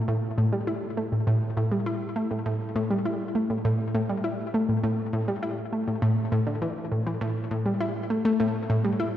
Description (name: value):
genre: ambient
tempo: 101 BPM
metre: 4/4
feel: straight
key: unclear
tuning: A4 = 442 Hz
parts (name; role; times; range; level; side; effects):
- analog pluck; solo; 0.0-9.1 s; A2 to E4; -24 LUFS; equal; chorus, ping-pong delay
room: wet lush hall reverb, RT60 3.0 s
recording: worn, warbling old tape, cassette tape, warbly pitch drift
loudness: -24 LUFS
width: side -11 dB against mid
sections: 0.0-9.2 A section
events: none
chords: none